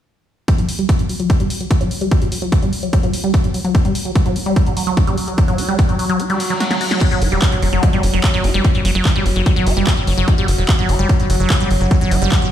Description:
psychedelic trance; 147 BPM; 4/4; straight; A4 = 440 Hz
liquid acid bass; riff; 0.5-12.5 s; F#3 to F#4; -20 LUFS; moving between left 4 dB and right 3 dB; phaser, auto-pan, sidechain pumping, ping-pong delay
electronic kick drum; drums; 0.5-12.4 s; -15 LUFS; equal; overdrive
techno drum kit; drums; 0.5-12.5 s; crash cymbal, handclaps, hi-hat, snare drum; -25 LUFS; equal; overdrive
overtone-sweeping drone; sustained chords; 4.4-12.5 s; F#3; -23 LUFS; right 1 dB; chorus, built-in reverb, sidechain pumping
reverse cymbal; sound effects; 6.3-7.0 s; -28 LUFS; left 3 dB
warbly tape-like pad; texture; 7.6-12.5 s; C#4 to C#6; -35 LUFS; right 2 dB
tight sequencer bass; bass; 7.2-12.3 s; E1 to F#1; -17 LUFS; equal; tube saturation
light reverb; played on a big sound system in a bare room, stone room reverb; -14 LUFS; side -10 dB against mid
0.5-7.0 A section; 7.0-12.5 B section
filter sweep on acid bass 0.5-7.0; kick drops out 6.2-7.0; reverse cymbal 6.3-7.0; drum fill 6.6-7.0
0.5 N.C.; 7.0 F#5
| 0.48 0.89 1.30 1.71 | 2.11 2.52 2.93 3.34 | 3.75 4.16 4.56 4.97 | 5.38 5.79 6.20 6.60 | 7.01 7.42 7.83 8.24 | 8.64 9.05 9.46 9.87 | 10.28 10.69 11.09 11.50 | 11.91 12.32

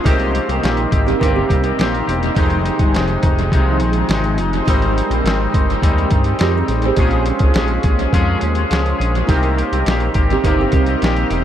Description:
indie pop, bedroom pop; 104 BPM; 4/4; straight; A4 = 444 Hz
chorused retro synth keys; accompaniment; 0.0-11.4 s; Db4 to C5; -23 LUFS; right 3 dB; analog delay
twangy electric guitar; accompaniment; 0.0-11.4 s; F2 to Ab4; -21 LUFS; left 3 dB; analog chorus, warbly pitch drift, analog delay
shimmering ambient pad; sustained chords; 0.0-11.4 s; C3 to G4; -25 LUFS; equal; chorus, built-in reverb
chorused synth bass; bass; 0.1-11.4 s; E1 to G2; -19 LUFS; equal
lo-fi sampler-style drum kit; drums; 0.1-11.4 s; hi-hat, kick drum, snare drum; -19 LUFS; equal; analog delay
kalimba; second line; 1.1-2.2, 6.4-11.4 s; C4 to C5; -23 LUFS; right 7 dB; ensemble chorus, analog delay
light reverb; echo-heavy mix; -14 LUFS; side -10 dB against mid
0.0-11.4 A section
0.1 Cm7; 2.4 Fm7; 4.7 Abmaj7; 7.0 Bbm7; 9.3 Cm7
| 0.06 0.63 1.21 1.79 | 2.36 2.94 3.52 4.09 | 4.67 5.25 5.83 6.40 | 6.98 7.56 8.13 8.71 | 9.29 9.86 10.44 11.02

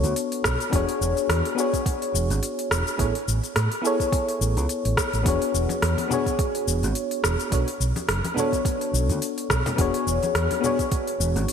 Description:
sunset chillout; 106 BPM; 4/4; swing 56% on 16ths; A4 = 440 Hz
mellow FM electric piano; accompaniment; 0.0-11.5 s; B3 to C#5; -25 LUFS; moving between left 7 dB and right 4 dB; chorus, auto-pan, digital delay
fingered electric bass; bass; 0.0-11.4 s; E1 to A2; -24 LUFS; right 1 dB
smooth R&B drum kit; drums; 0.0-11.5 s; cabasa, hi-hat, rim click; -28 LUFS; equal; overdrive, gated reverb
electronic kick drum; drums; 0.4-11.0 s; -25 LUFS; right 1 dB; overdrive
congas; percussion; 5.7-10.8 s; -34 LUFS; left 1 dB
moderate lush hall reverb, RT60 2.8 s; bright 1980s-style digital production; -21 LUFS; side -7 dB against mid
0.0-11.5 A section
0.0 Bm9; 0.7 E13; 3.0 Amaj9; 5.3 E13; 7.5 Bm9; 9.8 E13
0.16 | 0.73 1.29 1.86 2.43 | 2.99 3.56 4.12 4.69 | 5.26 5.82 6.39 6.96 | 7.52 8.09 8.65 9.22 | 9.79 10.35 10.92 11.48

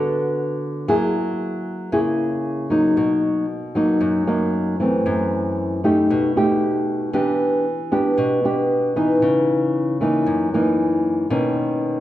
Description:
bossa nova; 115 BPM; 4/4; straight; A4 = 439 Hz
nylon-string guitar; solo; 0.0-12.0 s; F#2 to A4; -18 LUFS; equal
wet recital hall reverb, RT60 1.8 s; recorded in a church or concert hall; -18 LUFS; side -13 dB against mid
0.0-12.0 A section
0.0 Gmaj9 (rootless); 0.9 F#9; 3.0 Bmaj7; 5.0 F#m7b5; 6.1 B7b13; 7.1 Em7; 9.2 C#m9; 10.3 F#6; 11.3 Bmaj9
0.36 | 0.88 1.40 1.92 2.44 | 2.96 3.48 4.01 4.53 | 5.05 5.57 6.09 6.61 | 7.13 7.65 8.17 8.69 | 9.21 9.73 10.26 10.78 | 11.30 11.82

